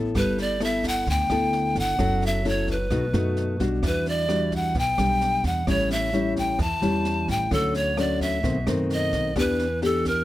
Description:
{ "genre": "bossa nova", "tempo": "130 BPM", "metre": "4/4", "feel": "straight", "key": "unclear", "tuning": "A4 = 442 Hz", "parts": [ { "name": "nylon-string guitar", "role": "accompaniment", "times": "0.0-10.2 s", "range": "A2 to A4", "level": "-26 LUFS", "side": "left 2 dB", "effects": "none" }, { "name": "upright bass", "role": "bass", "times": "0.0-10.2 s", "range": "F#1 to F#2", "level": "-28 LUFS", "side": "right 1 dB", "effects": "none" }, { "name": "jazz brush drum kit", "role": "drums", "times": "0.1-10.1 s", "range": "kick drum, rim click, snare drum", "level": "-32 LUFS", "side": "right 1 dB", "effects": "none" }, { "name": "breathy bright pan flute", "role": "melody", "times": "0.2-10.2 s", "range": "A4 to A5", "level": "-25 LUFS", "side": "equal", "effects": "none" } ], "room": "little or no reverb", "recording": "none", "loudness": "-21 LUFS", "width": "side -15 dB against mid", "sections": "0.0-10.2 A section", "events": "none", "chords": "0.1 G69; 2.0 F#m7; 2.9 B7; 3.8 Em9; 5.7 A7; 7.5 Dmaj7; 8.4 B7b9; 9.4 Em7", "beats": "| 0.15 0.61 1.07 1.53 | 1.99 2.45 2.91 3.37 | 3.83 4.29 4.75 5.21 | 5.67 6.13 6.59 7.05 | 7.51 7.97 8.44 8.90 | 9.36 9.82" }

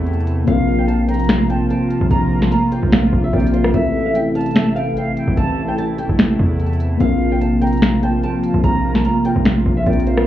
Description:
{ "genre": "hip hop, trap", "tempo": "147 BPM", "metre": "4/4", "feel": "half-time", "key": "unclear", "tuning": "A4 = 441 Hz", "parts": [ { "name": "flamenco guitar", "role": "melody", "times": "0.0-10.2 s", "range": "C5 to Bb5", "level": "-25 LUFS", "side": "equal", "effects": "ping-pong delay" }, { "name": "mellow tine electric piano", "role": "accompaniment", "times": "0.0-10.3 s", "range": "A3 to Bb4", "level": "-21 LUFS", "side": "left 3 dB", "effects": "phaser" }, { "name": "sweeping resonant pad", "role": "sustained chords", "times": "0.0-10.2 s", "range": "C3 to F4", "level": "-21 LUFS", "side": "right 2 dB", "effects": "chorus" }, { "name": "distorted 808-style bass", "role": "bass", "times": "0.0-10.3 s", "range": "A1 to E2", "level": "-18 LUFS", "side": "equal", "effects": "distortion" }, { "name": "trap drum kit", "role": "drums", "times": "0.1-10.3 s", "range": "finger snaps, hi-hat, rim click, snare drum", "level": "-16 LUFS", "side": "equal", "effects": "overdrive" }, { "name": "concert flute", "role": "second line", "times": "0.5-10.3 s", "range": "E5 to Bb5", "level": "-28 LUFS", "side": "right 2 dB", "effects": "ping-pong delay" } ], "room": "digital ambience", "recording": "heard muffled through a wall, club reverb, EQ", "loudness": "-14 LUFS", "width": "side -12 dB against mid", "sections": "0.0-10.3 A section", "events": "none", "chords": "0.5 Bbsus2; 3.7 Am; 7.0 Bbsus2", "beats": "0.07 | 0.47 0.88 1.29 1.70 | 2.11 2.52 2.92 3.33 | 3.74 4.15 4.56 4.96 | 5.37 5.78 6.19 6.60 | 7.00 7.41 7.82 8.23 | 8.64 9.05 9.45 9.86" }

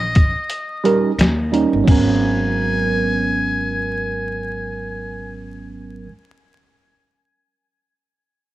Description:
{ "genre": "hip hop, jazz-hop", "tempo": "88 BPM", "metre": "4/4", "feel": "swing 60% on 16ths", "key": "G# minor", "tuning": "A4 = 440 Hz", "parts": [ { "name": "trumpet with metal mute", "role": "melody", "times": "0.0-5.4 s", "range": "D#5 to G#5", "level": "-24 LUFS", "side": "left 2 dB", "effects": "cassette tape, tape echo" }, { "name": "upright bass", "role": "bass", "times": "0.0-6.1 s", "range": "G1 to D#2", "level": "-25 LUFS", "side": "equal", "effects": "none" }, { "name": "trip hop sampler-style drum kit", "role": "drums", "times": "0.2-2.1 s", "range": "crash cymbal, hi-hat, kick drum, snare drum", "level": "-16 LUFS", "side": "equal", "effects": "cassette tape" }, { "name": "tine electric piano", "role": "accompaniment", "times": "0.8-6.1 s", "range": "F#3 to A#4", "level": "-20 LUFS", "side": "right 4 dB", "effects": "phaser, cassette tape" } ], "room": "light reverb", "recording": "home recording on cassette, vinyl crackle", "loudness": "-16 LUFS", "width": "side -15 dB against mid", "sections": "0.0-1.9 A section; 1.9-4.6 B section", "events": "kick muted 0.5-1.9", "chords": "0.0 A#m; 1.2 D#7; 1.9 G#m11", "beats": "0.51 1.19 | 1.87 2.56 3.24 3.92" }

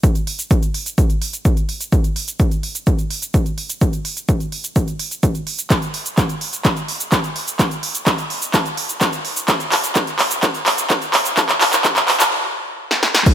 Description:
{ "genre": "EDM", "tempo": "127 BPM", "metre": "4/4", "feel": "straight", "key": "none", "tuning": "none", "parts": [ { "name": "big-room dance drum kit", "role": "drums", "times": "0.0-13.3 s", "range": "crash cymbal, handclaps, hi-hat, shaker, snare drum", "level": "-18 LUFS", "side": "right 1 dB", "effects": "none" }, { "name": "electronic kick drum", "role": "drums", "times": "0.0-13.3 s", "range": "none", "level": "-16 LUFS", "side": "equal", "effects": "none" } ], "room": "moderate lush hall reverb, RT60 2.0 s", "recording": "high-pass filter", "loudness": "-16 LUFS", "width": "side -10 dB against mid", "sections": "0.0-13.3 A section", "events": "build-up 0.0-13.3; filter sweep 0.0-13.3; drum fill 5.7-12.3, 12.9-13.3; stop 12.3-13.3", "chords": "none", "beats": "| 0.04 0.51 0.98 1.45 | 1.93 2.40 2.87 3.34 | 3.81 4.29 4.76 5.23 | 5.71 6.18 6.65 7.12 | 7.59 8.07 8.54 9.01 | 9.48 9.96 10.43 10.90 | 11.37 11.85 12.32 12.79 | 13.26" }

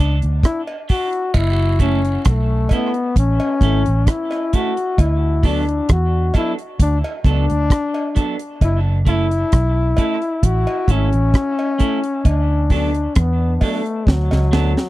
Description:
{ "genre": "dub reggae", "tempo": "66 BPM", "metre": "4/4", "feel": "straight", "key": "F# minor", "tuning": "A4 = 439 Hz", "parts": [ { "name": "clear trombone", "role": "melody", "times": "0.0-14.9 s", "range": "F#3 to F#4", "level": "-21 LUFS", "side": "left 3 dB", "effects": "dub echo" }, { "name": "clean electric guitar", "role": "accompaniment", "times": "0.0-14.7 s", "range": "F#3 to A4", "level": "-27 LUFS", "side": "right 5 dB", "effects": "high-pass filter, dub echo" }, { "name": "vintage muted fingered electric bass", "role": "bass", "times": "0.0-14.7 s", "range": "F#1 to E2", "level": "-17 LUFS", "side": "equal", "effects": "none" }, { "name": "deep reggae drum kit", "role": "drums", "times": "0.2-14.9 s", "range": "hi-hat, kick drum, rim click, snare drum", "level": "-15 LUFS", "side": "equal", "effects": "none" }, { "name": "cowbell and jawbone-type rattle", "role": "percussion", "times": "0.7-14.5 s", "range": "none", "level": "-32 LUFS", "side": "right 2 dB", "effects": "dub echo" } ], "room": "little or no reverb", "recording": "dry, close 1970s-style studio recording", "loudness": "-15 LUFS", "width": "side -16 dB against mid", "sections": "0.0-14.9 A section", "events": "drum fill 14.1-14.9", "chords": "0.0 D6; 1.3 F#m7; 5.0 D6; 8.6 F#m7; 12.2 D6", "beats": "0.44 | 1.35 2.25 3.16 4.07 | 4.98 5.89 6.79 7.70 | 8.61 9.52 10.43 11.34 | 12.25 13.16 14.06" }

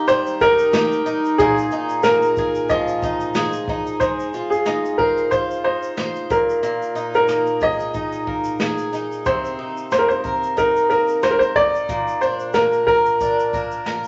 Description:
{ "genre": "acoustic pop", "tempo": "91 BPM", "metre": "4/4", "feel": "swing 55% on 16ths", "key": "unclear", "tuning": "A4 = 440 Hz", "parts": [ { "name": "clear upright piano", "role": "melody", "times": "0.0-14.1 s", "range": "Ab4 to Eb5", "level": "-21 LUFS", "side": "equal", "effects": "none" }, { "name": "picked twelve-string acoustic guitar", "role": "accompaniment", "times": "0.0-14.1 s", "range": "Bb2 to C5", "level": "-25 LUFS", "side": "equal", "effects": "none" }, { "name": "jazz brush drum kit", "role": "drums", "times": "0.1-14.1 s", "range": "kick drum, shaker, snare drum", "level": "-31 LUFS", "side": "equal", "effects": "none" } ], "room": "wet large studio reverb, RT60 0.9 s", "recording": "nothing above 7.8 kHz", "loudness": "-19 LUFS", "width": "mono", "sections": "0.0-4.0 A section; 4.0-14.1 B section", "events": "none", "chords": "0.0 Eb; 1.4 Bb7sus4; 4.0 Ab6; 6.3 Bb7sus4; 9.3 Cm7; 11.9 Bb", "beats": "0.09 0.74 | 1.39 2.04 2.70 3.35 | 4.01 4.67 5.32 5.98 | 6.64 7.29 7.95 8.61 | 9.27 9.92 10.58 11.24 | 11.89 12.55 13.21 13.86" }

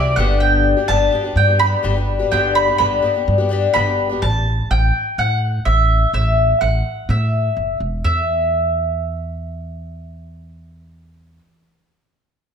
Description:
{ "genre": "indie folk with a building arrangement", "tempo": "126 BPM", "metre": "4/4", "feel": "straight", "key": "unclear", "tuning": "A4 = 440 Hz", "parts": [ { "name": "mandolin", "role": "melody", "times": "0.0-11.4 s", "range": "D5 to B5", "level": "-19 LUFS", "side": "right 2 dB", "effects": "slapback echo" }, { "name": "picked twelve-string acoustic guitar", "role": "accompaniment", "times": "0.0-4.2 s", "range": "G2 to G4", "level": "-19 LUFS", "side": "left 7 dB", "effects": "none" }, { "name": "upright bass", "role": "bass", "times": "0.0-11.4 s", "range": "E1 to A2", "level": "-19 LUFS", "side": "right 1 dB", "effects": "none" } ], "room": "moderate recital hall reverb, RT60 1.4 s", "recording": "none", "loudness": "-15 LUFS", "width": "side -7 dB against mid", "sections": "0.0-8.0 A section; 8.0-11.9 B section", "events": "none", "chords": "0.2 G; 4.2 A5; 8.0 N.C.", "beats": "| 0.41 0.89 1.37 1.84 | 2.32 2.80 3.28 3.75 | 4.23 4.71 5.18 5.66 | 6.14 6.62 7.09 7.57 | 8.05 8.52 9.00 9.48 | 9.95 10.43 10.90 11.38" }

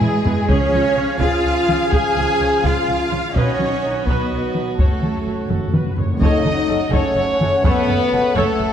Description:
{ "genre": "cinematic, epic orchestral film score", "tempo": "84 BPM (dotted quarters)", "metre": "6/8", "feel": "straight", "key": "F# dorian", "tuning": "A4 = 439 Hz", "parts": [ { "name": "warm symphonic violin section", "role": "melody", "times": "0.0-8.7 s", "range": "G#4 to G#5", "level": "-29 LUFS", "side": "left 6 dB", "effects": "none" }, { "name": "warm symphonic violin section", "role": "second line", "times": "0.0-8.7 s", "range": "G#4 to G#5", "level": "-25 LUFS", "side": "left 3 dB", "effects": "none" }, { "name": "warm symphonic viola section", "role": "accompaniment", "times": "0.0-8.7 s", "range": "B3 to E#5", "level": "-26 LUFS", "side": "right 1 dB", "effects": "none" }, { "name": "clear trombone section", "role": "sustained chords", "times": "0.0-8.7 s", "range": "B2 to A3", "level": "-28 LUFS", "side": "right 3 dB", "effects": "none" }, { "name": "warm French horn section", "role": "sustained chords", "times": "0.0-8.7 s", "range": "G#3 to G#4", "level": "-24 LUFS", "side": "left 4 dB", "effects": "none" }, { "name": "bright trumpet section", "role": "stabs", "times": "0.0-8.7 s", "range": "F#4 to D#5", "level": "-26 LUFS", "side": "right 2 dB", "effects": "none" }, { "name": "rich chamber cello section", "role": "bass", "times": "0.0-8.7 s", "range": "F#2 to G#4", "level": "-24 LUFS", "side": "right 4 dB", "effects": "none" }, { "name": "rich symphonic double bass section", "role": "bass", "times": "0.0-8.7 s", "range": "F#1 to E2", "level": "-25 LUFS", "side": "right 3 dB", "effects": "none" }, { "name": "taiko ensemble", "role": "drums", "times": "0.0-8.7 s", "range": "none", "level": "-21 LUFS", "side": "left 1 dB", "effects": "none" }, { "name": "timpani", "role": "percussion", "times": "0.5-1.2, 4.8-6.9 s", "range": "F#2 to C#3", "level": "-26 LUFS", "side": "equal", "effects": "none" }, { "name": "mellow hollow wooden flute", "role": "second line", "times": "6.2-8.7 s", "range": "A4 to E#5", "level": "-26 LUFS", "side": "left 2 dB", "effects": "none" } ], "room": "moderate scoring stage reverb, RT60 1.9 s", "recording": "dark, warm production", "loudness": "-15 LUFS", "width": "side -9 dB against mid", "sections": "0.0-6.2 A section; 6.2-8.7 B section", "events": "drum fill 0.0-0.5, 5.5-6.2; timpani fill 4.8-6.2", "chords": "0.5 C#; 3.4 B; 4.8 F#m", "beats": "| 0.50 1.21 | 1.93 2.64 | 3.36 4.07 | 4.79 5.50 | 6.21 6.93 | 7.64 8.36" }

